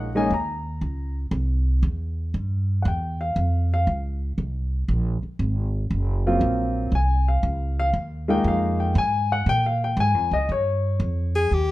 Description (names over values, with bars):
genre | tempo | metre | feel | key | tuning
jazz, small-group swing and bop | 118 BPM | 4/4 | swing 69% on 8ths | unclear | A4 = 436 Hz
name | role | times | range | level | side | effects
warm grand piano | accompaniment | 0.0-11.4 s | Gb3 to Bb5 | -23 LUFS | left 2 dB | none
upright bass | bass | 0.0-11.7 s | Gb1 to Bb2 | -23 LUFS | right 1 dB | none
clear alto saxophone | melody | 11.4-11.7 s | G4 to Ab4 | -21 LUFS | left 2 dB | none
room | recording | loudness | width
moderate large studio reverb, RT60 0.9 s | dark, warm production | -21 LUFS | side -16 dB against mid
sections
0.0-11.5 A section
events
none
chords
0.0 Gb6 (rootless); 1.3 C; 3.4 Fsus4; 5.4 Ab13; 7.4 Db6; 9.5 Bbm7; 10.5 Fsus2